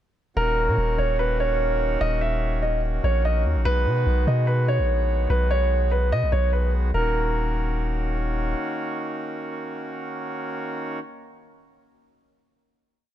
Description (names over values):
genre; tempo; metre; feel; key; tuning
hip hop, drill; 146 BPM; 4/4; half-time; Eb minor; A4 = 440 Hz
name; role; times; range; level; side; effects
dark grand piano; melody; 0.4-8.1 s; Bb4 to Fb5; -25 LUFS; right 2 dB; none
hand-pumped harmonium; sustained chords; 0.4-11.0 s; Eb3 to Gb4; -30 LUFS; equal; none
long sustained 808-style bass; bass; 0.4-8.5 s; Eb1 to B2; -22 LUFS; equal; none
room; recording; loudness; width
light reverb, studio ambience; none; -21 LUFS; side -11 dB against mid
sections
0.4-6.9 breakdown; 6.9-10.2 final chord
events
none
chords
0.4 Ebm7; 3.7 B6; 6.9 Ebm7